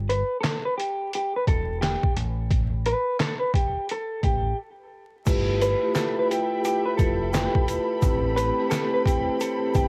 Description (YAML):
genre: hip hop, boom-bap hip-hop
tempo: 87 BPM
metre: 4/4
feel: swing 63% on 16ths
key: unclear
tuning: A4 = 444 Hz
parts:
  - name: deep dub fingered electric bass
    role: bass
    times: 0.0-9.9 s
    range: E1 to A1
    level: -30 LUFS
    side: equal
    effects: none
  - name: mellow electric guitar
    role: melody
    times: 0.1-9.9 s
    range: G4 to B4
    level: -29 LUFS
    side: equal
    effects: high-pass filter, low-pass filter, cassette tape
  - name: trip hop sampler-style drum kit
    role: drums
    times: 0.1-9.9 s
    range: crash cymbal, handclaps, hi-hat, kick drum, snare drum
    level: -27 LUFS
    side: equal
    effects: cassette tape
  - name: vibraphone with soft mallets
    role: accompaniment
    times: 5.2-9.9 s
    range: A3 to B4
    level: -28 LUFS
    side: equal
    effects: cassette tape, high-pass filter, low-pass filter
  - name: muted studio string section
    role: sustained chords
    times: 5.3-9.9 s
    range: C4 to B5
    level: -36 LUFS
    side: equal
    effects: high-pass filter, low-pass filter, cassette tape
  - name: tube shaker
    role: percussion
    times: 5.3-9.9 s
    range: none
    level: -47 LUFS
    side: equal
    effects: none
room: small room ambience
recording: home recording on cassette, vinyl crackle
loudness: -25 LUFS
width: mono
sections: 0.0-5.3 A section; 5.3-9.9 B section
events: break 0.0-5.3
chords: 0.0 Em/G; 2.2 Gsus2/A; 5.3 G13; 8.0 Am9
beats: 0.44 1.13 1.82 | 2.51 3.20 3.89 4.58 | 5.27 5.96 6.64 7.33 | 8.03 8.71 9.40